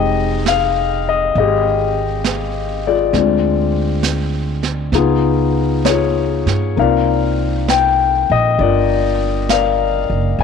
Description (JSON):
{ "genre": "jazz ballad", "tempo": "67 BPM", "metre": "4/4", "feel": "swing 68% on 8ths", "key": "unclear", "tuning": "A4 = 438 Hz", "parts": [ { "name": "dark baby grand piano", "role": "accompaniment", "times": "0.0-10.4 s", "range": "Ab3 to G5", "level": "-15 LUFS", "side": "left 9 dB", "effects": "none" }, { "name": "upright bass", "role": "bass", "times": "0.0-10.4 s", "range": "F1 to G2", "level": "-19 LUFS", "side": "right 3 dB", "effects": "none" }, { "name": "vintage brush drum kit", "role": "drums", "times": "0.5-10.4 s", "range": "brushed snare drum, hi-hat, snare drum", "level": "-25 LUFS", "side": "right 9 dB", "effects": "none" } ], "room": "moderate spring reverb, RT60 2.3 s", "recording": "1960s-style stereo with parts hard left and right", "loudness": "-14 LUFS", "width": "side -6 dB against mid", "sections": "0.0-10.4 A section", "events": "none", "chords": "0.0 Fm9; 3.1 Dm7b5; 4.9 Db9; 6.8 Cm11", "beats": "0.45 1.34 2.24 | 3.13 4.03 4.93 5.85 | 6.77 7.68 8.59 9.49 | 10.39" }